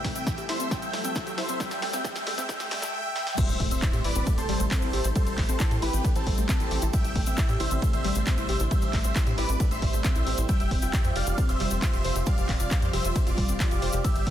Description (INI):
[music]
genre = uplifting trance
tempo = 135 BPM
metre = 4/4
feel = straight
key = A minor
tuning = A4 = 440 Hz
[part]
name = big supersaw lead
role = melody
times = 0.0-14.3 s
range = C4 to G5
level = -32 LUFS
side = right 1 dB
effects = phaser, sidechain pumping, dub echo
[part]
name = lush unison pad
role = sustained chords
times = 0.0-14.3 s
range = B2 to A4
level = -38 LUFS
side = right 1 dB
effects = chorus, phaser, sidechain pumping
[part]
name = wide unison pluck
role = arpeggios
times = 0.0-14.3 s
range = G3 to C5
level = -34 LUFS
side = left 2 dB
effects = sidechain pumping, dub echo
[part]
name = tight sequencer bass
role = bass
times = 0.0-14.3 s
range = F1 to A2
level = -30 LUFS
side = equal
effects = sidechain pumping, high-pass filter
[part]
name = electronic kick drum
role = drums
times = 0.0-14.3 s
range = none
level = -26 LUFS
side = equal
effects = none
[part]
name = punchy analog drum machine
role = drums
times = 0.0-14.3 s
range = crash cymbal, handclaps, hi-hat, ride cymbal, snare drum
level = -34 LUFS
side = equal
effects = high-pass filter on snare, high-pass filter on hats, high-pass filter on cymbals, high-pass filter on room
[part]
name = riser and impact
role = sound effects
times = 0.0-5.2 s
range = none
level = -37 LUFS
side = equal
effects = none
[part]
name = cabasa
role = percussion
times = 0.2-14.2 s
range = none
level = -39 LUFS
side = left 7 dB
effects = none
[sound]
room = little or no reverb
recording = dense, heavily limited modern master, high-pass filter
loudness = -24 LUFS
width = side -11 dB against mid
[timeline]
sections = 0.0-3.4 A section; 3.4-14.3 B section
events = build-up 0.0-3.4; drum fill 0.0-2.9, 3.2; riser 0.0-2.9; filter sweep on synth pluck 0.0-3.4; drop 3.4-14.3; impact 3.4-5.2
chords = 0.0 Am7; 10.5 Fsus2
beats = 0.27 0.71 1.16 | 1.60 2.04 2.49 2.93 | 3.38 3.82 4.27 4.71 | 5.16 5.60 6.04 6.49 | 6.93 7.38 7.82 8.27 | 8.71 9.16 9.60 10.04 | 10.49 10.93 11.38 11.82 | 12.27 12.71 13.16 13.60 | 14.04